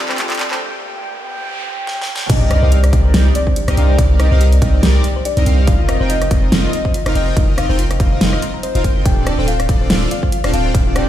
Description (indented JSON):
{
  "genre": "future bass",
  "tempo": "142 BPM",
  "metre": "4/4",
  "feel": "swing 56% on 16ths, half-time",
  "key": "unclear",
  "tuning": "A4 = 441 Hz",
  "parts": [
    { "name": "shimmering ambient pad", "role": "sustained chords", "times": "0.0-0.6 s", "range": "F3 to D5", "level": "-41 LUFS", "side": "equal", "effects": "none" },
    { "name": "thumb-piano-like synth pluck", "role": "arpeggios", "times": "0.0-11.0 s", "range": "F4 to C6", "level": "-29 LUFS", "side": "left 4 dB", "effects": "chorus, sidechain pumping, ping-pong delay" },
    { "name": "soft supersaw", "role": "riff", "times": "0.0-11.0 s", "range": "C4 to G5", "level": "-22 LUFS", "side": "right 1 dB", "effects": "lush chorus, sidechain pumping, ping-pong delay" },
    { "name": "riser, noise sweep and sub drop", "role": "sound effects", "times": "0.0-4.0 s", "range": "none", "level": "-25 LUFS", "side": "right 1 dB", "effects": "none" },
    { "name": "big-room dance drum kit", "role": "drums", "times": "0.1-11.1 s", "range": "crash cymbal, handclaps, hi-hat, rim click, snare drum", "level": "-21 LUFS", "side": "equal", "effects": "high-pass filter on snare, high-pass filter on hats, high-pass filter on cymbals" },
    { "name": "soft octave-layered synth lead", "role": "melody", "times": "0.2-11.1 s", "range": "C5 to G5", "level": "-24 LUFS", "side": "left 2 dB", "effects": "chorus, phaser, sidechain pumping, ping-pong delay" },
    { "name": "long sustained 808-style bass", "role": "bass", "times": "2.3-11.1 s", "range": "D1 to C2", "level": "-15 LUFS", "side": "equal", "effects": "sidechain pumping" },
    { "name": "electronic kick drum", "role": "drums", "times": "2.3-10.8 s", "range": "none", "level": "-16 LUFS", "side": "equal", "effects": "none" }
  ],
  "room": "digital ambience",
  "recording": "played on a big sound system in a bare room, large studio reverb, high-pass filter",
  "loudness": "-12 LUFS",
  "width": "side -12 dB against mid",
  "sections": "0.0-2.3 A section; 2.3-11.1 B section",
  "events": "build-up 0.0-2.3; drum fill 0.0-0.6, 1.9-2.3; riser 0.0-2.3; break 0.6-2.3; noise sweep 0.6-2.3; drop 2.3-11.1; impact 2.3-4.0",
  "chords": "0.0 Gm7; 2.3 Cm9; 5.7 F7sus4; 9.1 Dm7",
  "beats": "0.18 | 0.61 1.03 1.45 1.87 | 2.30 2.72 3.14 3.56 | 3.99 4.41 4.83 5.25 | 5.68 6.10 6.52 6.94 | 7.37 7.79 8.21 8.63 | 9.06 9.48 9.90 10.32 | 10.75"
}